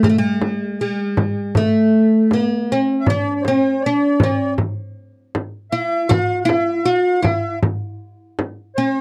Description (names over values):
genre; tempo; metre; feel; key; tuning
Arabic maqam ensemble; 79 BPM; 4/4; straight; unclear; A4 = 439 Hz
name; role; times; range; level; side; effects
oud; melody; 0.0-9.0 s; G#3-50c to F#4-50c; -19 LUFS; equal; none
frame drum; percussion; 0.0-8.6 s; none; -23 LUFS; equal; none
accordion; second line; 3.0-9.0 s; C5+50c to F#5-50c; -25 LUFS; equal; light tremolo tuning
room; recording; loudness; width
light reverb; dry, close 1970s-style studio recording; -18 LUFS; mono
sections
0.0-9.0 A section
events
none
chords
none